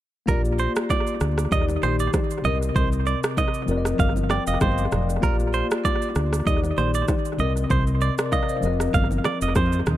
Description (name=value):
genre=afrobeats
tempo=97 BPM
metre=4/4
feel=swing 55% on 16ths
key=Bb major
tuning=A4 = 440 Hz
part: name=tine electric piano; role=accompaniment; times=0.3-10.0 s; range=C3 to G5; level=-26 LUFS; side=left 3 dB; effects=medium tremolo, dub echo
part: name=direct-recorded clean electric guitar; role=riff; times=0.3-9.8 s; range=Bb4 to F5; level=-27 LUFS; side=right 6 dB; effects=dub echo
part: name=fingered electric bass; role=bass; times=0.3-10.0 s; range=F1 to F2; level=-24 LUFS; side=equal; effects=none
part: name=afro-pop drum kit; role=drums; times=0.3-10.0 s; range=kick drum, rim click, shaker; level=-25 LUFS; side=equal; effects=dub echo
part: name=congas and bongos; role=percussion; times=0.3-10.0 s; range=none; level=-33 LUFS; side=right 1 dB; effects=none
room=light reverb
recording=echo-heavy mix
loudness=-20 LUFS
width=side -13 dB against mid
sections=0.3-10.0 A section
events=tine electric piano fill 4.0-5.2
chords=0.3 Bb6; 1.5 Ebmaj7; 2.4 Cm7; 3.7 F7sus4; 5.2 Bb6; 6.5 Ebmaj7; 7.4 Cm7; 8.6 F7sus4